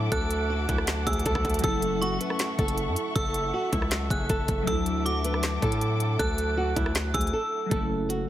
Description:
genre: hip hop, trap.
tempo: 158 BPM.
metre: 4/4.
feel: half-time.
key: F# minor.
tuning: A4 = 440 Hz.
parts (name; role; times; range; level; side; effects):
flamenco guitar; melody; 0.0-8.2 s; E4 to B4; -30 LUFS; right 2 dB; low-pass filter.
metallic FM bell; second line; 0.0-7.7 s; C#6 to F#6; -33 LUFS; right 1 dB; chorus, tape echo.
glassy digital keys; accompaniment; 0.0-8.3 s; F#3 to E4; -34 LUFS; left 2 dB; chorus, low-pass filter.
muted studio string section; sustained chords; 0.0-7.7 s; A4 to D6; -35 LUFS; equal; none.
hard-hitting 808-style bass; bass; 0.0-8.3 s; F#1 to A2; -29 LUFS; equal; none.
trap drum kit; drums; 0.1-8.2 s; handclaps, hi-hat, kick drum, rim click, snare drum; -29 LUFS; equal; none.
room: digital ambience.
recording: heavily compressed radio sound.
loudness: -24 LUFS.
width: side -12 dB against mid.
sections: 0.0-7.7 A section.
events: break 7.3-7.7.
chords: 0.0 Dadd9; 1.6 F#m7; 4.7 Dadd9; 7.7 F#m7.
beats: | 0.12 0.50 0.88 1.26 | 1.64 2.02 2.40 2.78 | 3.16 3.54 3.92 4.30 | 4.67 5.05 5.43 5.82 | 6.19 6.57 6.95 7.33 | 7.71 8.09.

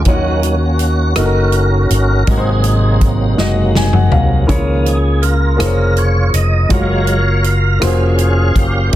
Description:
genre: slow gospel.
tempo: 54 BPM (dotted quarters).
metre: 6/8.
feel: straight.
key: unclear.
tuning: A4 = 442 Hz.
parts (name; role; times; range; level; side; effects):
warm upright piano; accompaniment; 0.0-9.0 s; Ab2 to Ab5; -18 LUFS; left 1 dB; none.
tonewheel organ; sustained chords; 0.0-9.0 s; C3 to F5; -18 LUFS; right 2 dB; slow rotary speaker, overdrive, chorus vibrato.
fingered electric bass; bass; 0.0-9.0 s; F1 to Eb2; -14 LUFS; equal; none.
natural country drum kit; drums; 0.1-9.0 s; hi-hat, kick drum, rim click, snare drum, toms; -17 LUFS; equal; none.
room: light reverb, small room ambience.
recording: dense, heavily limited modern master.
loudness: -11 LUFS.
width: side -13 dB against mid.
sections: 0.0-9.0 A section.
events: tonewheel organ solo 0.0-9.0; drum fill 3.4-4.5; upright piano fill 3.4-4.5.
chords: 0.1 Ebm7; 2.3 Ab7; 4.5 Db6; 6.7 Gbmaj7.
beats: | 0.06 1.17 | 2.27 3.38 | 4.49 5.60 | 6.71 7.82 | 8.93.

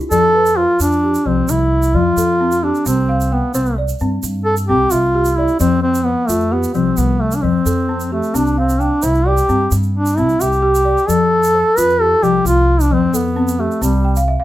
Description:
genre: west african traditional, West African string and xylophone music.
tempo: 88 BPM (dotted quarters).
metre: 12/8.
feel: straight.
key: F lydian.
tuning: A4 = 439 Hz.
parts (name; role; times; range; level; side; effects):
balafon; arpeggios; 0.0-14.4 s; F3 to G5; -20 LUFS; left 3 dB; none.
egg shaker; percussion; 0.0-14.3 s; none; -28 LUFS; right 7 dB; none.
warm duduk; melody; 0.1-14.2 s; G3 to B4; -15 LUFS; equal; none.
upright bass; bass; 0.1-14.3 s; C2 to G2; -19 LUFS; equal; none.
room: moderate studio reverb, RT60 0.7 s.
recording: rough home demo mix.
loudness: -13 LUFS.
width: side -14 dB against mid.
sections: 0.1-14.4 A section.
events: duduk solo 0.1-14.4; balafon fill 14.0-14.4.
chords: 0.1 F; 2.9 C; 5.6 F; 8.3 C; 11.1 F; 13.8 C5.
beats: | 0.12 0.80 1.49 2.17 | 2.86 3.54 4.23 4.92 | 5.60 6.29 6.97 7.66 | 8.35 9.03 9.72 10.40 | 11.09 11.77 12.46 13.14 | 13.82.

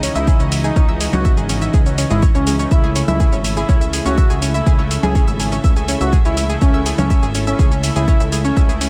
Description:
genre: melodic techno.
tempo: 123 BPM.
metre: 4/4.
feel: straight.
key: unclear.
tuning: A4 = 440 Hz.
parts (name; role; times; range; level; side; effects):
clear studio string section; sustained chords; 0.0-8.9 s; E3 to E5; -32 LUFS; equal; sidechain pumping.
analog pluck; arpeggios; 0.0-8.9 s; G#3 to E5; -27 LUFS; equal; chorus, sidechain pumping, dub echo.
brassy analog pad; stabs; 0.0-8.9 s; C#3 to E4; -28 LUFS; equal; chorus, sidechain pumping, dub echo.
plucky analog bass; bass; 0.0-8.9 s; G#1 to C#2; -23 LUFS; equal; tube saturation, sidechain pumping.
electronic hi-hat, shaker and congas; drums; 0.0-8.9 s; none; -26 LUFS; equal; sidechain pumping on cymbals, small room reverb, sidechain pumping on perc, sidechain pumping on hats.
expressive synth lead; melody; 0.2-8.7 s; C#4 to G#4; -26 LUFS; equal; subtle chorus, cassette tape, digital delay.
electronic kick drum; drums; 0.3-8.7 s; none; -16 LUFS; equal; small room reverb.
room: digital ambience.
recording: none.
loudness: -16 LUFS.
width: mono.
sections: 0.0-8.9 A section.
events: none.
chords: 0.0 C#madd9; 2.7 A.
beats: 0.27 | 0.76 1.25 1.74 2.23 | 2.71 3.20 3.69 4.18 | 4.66 5.15 5.64 6.13 | 6.62 7.10 7.59 8.08 | 8.57.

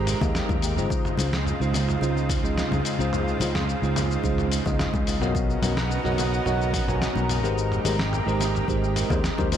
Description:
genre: sunset chillout.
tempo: 108 BPM.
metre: 4/4.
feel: straight.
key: Db lydian.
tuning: A4 = 440 Hz.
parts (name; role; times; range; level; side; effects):
bell-like tine electric piano; accompaniment; 0.0-9.6 s; Db3 to Ab5; -28 LUFS; moving between left 6 dB and right 8 dB; auto-pan, analog delay.
lush unison pad; sustained chords; 0.0-9.6 s; C3 to Bb4; -30 LUFS; equal; chorus.
sustaining fretless electric bass; bass; 0.0-9.6 s; Ab1 to Eb2; -26 LUFS; equal; none.
dusty soul sampler-style drum kit; drums; 0.1-9.6 s; hi-hat, shaker, snare drum, toms; -30 LUFS; equal; analog delay.
electronic kick drum; drums; 0.2-9.5 s; none; -29 LUFS; equal; overdrive.
congas; percussion; 0.2-9.5 s; none; -35 LUFS; left 3 dB; none.
room: light reverb.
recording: echo-heavy mix.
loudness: -22 LUFS.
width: side -9 dB against mid.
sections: 0.0-9.6 A section.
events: none.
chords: 0.0 Abmaj9; 0.9 Dbmaj9; 5.3 Cbmaj9; 7.6 Abmaj9.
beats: 0.35 | 0.90 1.46 2.02 2.57 | 3.13 3.68 4.24 4.79 | 5.35 5.90 6.46 7.01 | 7.57 8.13 8.68 9.24.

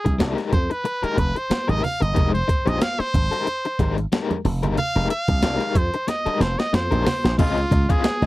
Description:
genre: funk.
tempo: 92 BPM.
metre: 4/4.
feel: swing 56% on 16ths.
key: F minor.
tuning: A4 = 440 Hz.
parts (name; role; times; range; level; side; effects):
brilliant trumpet; melody; 0.0-8.3 s; F4 to F5; -25 LUFS; right 1 dB; none.
crunchy overdriven guitar; accompaniment; 0.0-8.3 s; Ab3 to F5; -25 LUFS; left 5 dB; tremolo.
slap bass with an envelope filter; bass; 0.1-8.3 s; F1 to F2; -22 LUFS; equal; none.
breakbeat sampler-style drum kit; drums; 0.1-8.3 s; crash cymbal, hi-hat, kick drum, snare drum; -23 LUFS; equal; none.
congas; percussion; 0.1-8.2 s; none; -30 LUFS; right 4 dB; none.
room: little or no reverb.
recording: dry, close 1970s-style studio recording.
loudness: -19 LUFS.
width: side -18 dB against mid.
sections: 0.0-7.4 A section.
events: trumpet solo 0.0-7.4; drum fill 6.1-7.4.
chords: 0.0 Fm11; 7.4 Dbmaj9.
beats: 0.20 0.85 1.51 | 2.16 2.81 3.47 4.12 | 4.78 5.43 6.08 6.74 | 7.39 8.04.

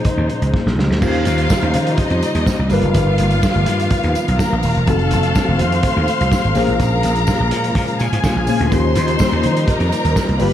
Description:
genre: disco.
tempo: 125 BPM.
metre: 4/4.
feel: straight.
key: unclear.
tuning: A4 = 441 Hz.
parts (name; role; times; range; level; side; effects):
tine electric piano; accompaniment; 0.0-10.5 s; Bb2 to C5; -22 LUFS; left 2 dB; phaser.
dark studio string section; sustained chords; 0.0-10.5 s; Db3 to F5; -22 LUFS; left 1 dB; none.
vintage drum kit; drums; 0.0-10.5 s; crash cymbal, hi-hat, kick drum, snare drum; -21 LUFS; right 1 dB; none.
congas; percussion; 0.1-10.5 s; none; -28 LUFS; left 5 dB; none.
vintage slap bass; bass; 0.2-10.5 s; D#1 to Eb3; -18 LUFS; right 1 dB; none.
rich studio string section; second line; 1.0-10.5 s; Eb4 to C6; -22 LUFS; equal; none.
tambourine; percussion; 1.0-10.5 s; none; -37 LUFS; right 10 dB; none.
room: light reverb, studio reverb.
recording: dark, warm production.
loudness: -14 LUFS.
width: side -11 dB against mid.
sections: 0.0-1.0 A section; 1.0-10.5 B section.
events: drum fill 0.5-1.0.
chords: 0.0 Bbm11; 1.0 Eb13; 2.7 G7alt; 4.9 F7b9; 6.6 Bbm7; 8.7 Eb13.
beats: 0.06 0.54 | 1.02 1.50 1.99 2.47 | 2.95 3.43 3.91 4.39 | 4.88 5.36 5.84 6.32 | 6.80 7.28 7.76 8.24 | 8.72 9.20 9.68 10.16.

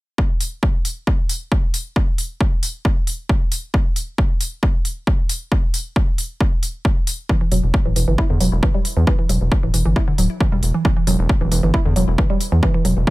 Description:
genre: driving peak-time techno.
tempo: 135 BPM.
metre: 4/4.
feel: straight.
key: E minor.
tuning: A4 = 440 Hz.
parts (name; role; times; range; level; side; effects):
electronic kick drum; drums; 0.2-13.1 s; none; -18 LUFS; equal; overdrive, small room ambience.
electronic hi-hat; drums; 0.4-12.9 s; none; -25 LUFS; left 1 dB; overdrive, sidechain pumping on hats, small room ambience.
woody wave-folded pluck; riff; 7.3-12.9 s; D3 to E4; -22 LUFS; right 1 dB; chorus, tube saturation, sidechain pumping, ping-pong delay.
gritty driven synth bass; bass; 7.5-13.1 s; D1 to E2; -18 LUFS; equal; tube saturation, sidechain pumping.
room: little or no reverb.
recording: none.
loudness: -16 LUFS.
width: side -19 dB against mid.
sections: 0.2-13.1 A section.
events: none.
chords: none.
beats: | 0.18 0.63 1.07 1.52 | 1.96 2.40 2.85 3.29 | 3.74 4.18 4.63 5.07 | 5.52 5.96 6.41 6.85 | 7.29 7.74 8.18 8.63 | 9.07 9.52 9.96 10.40 | 10.85 11.29 11.74 12.18 | 12.63 13.07.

